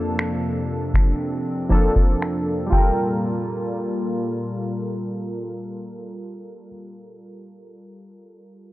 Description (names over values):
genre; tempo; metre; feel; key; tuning
contemporary R&B; 59 BPM; 4/4; straight; G minor; A4 = 440 Hz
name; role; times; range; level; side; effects
dark baby grand piano; melody; 0.0-6.7 s; G5 to A5; -30 LUFS; left 1 dB; analog delay
warm analog keys; accompaniment; 0.0-8.7 s; F3 to Bb4; -27 LUFS; equal; chorus
hollow soft pad; sustained chords; 0.0-6.7 s; F2 to F4; -28 LUFS; left 1 dB; chorus
booming analog drum machine; drums; 0.2-3.0 s; crash cymbal, finger snaps, kick drum; -18 LUFS; equal; none
room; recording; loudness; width
digital ambience; dry, gritty hardware recording, low-pass filter; -20 LUFS; side -17 dB against mid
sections
0.0-3.2 A section; 3.2-7.3 B section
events
filter sweep 0.0-3.2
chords
0.0 Bbmaj9/F; 2.7 Gm9